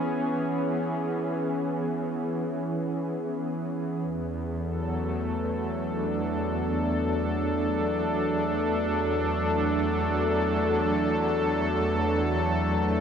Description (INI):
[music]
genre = ambient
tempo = free time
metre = none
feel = none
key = unclear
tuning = A4 = 442 Hz
[part]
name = warm analog pad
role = solo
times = 0.0-13.0 s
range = E2 to A4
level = -25 LUFS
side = equal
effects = chorus, tremolo, diffuse ambient delay
[sound]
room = wet huge ambient reverb, RT60 8.2 s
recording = none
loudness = -25 LUFS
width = side -7 dB against mid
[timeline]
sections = 0.0-13.0 A section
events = none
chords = 0.0 E; 4.0 D/E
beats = free time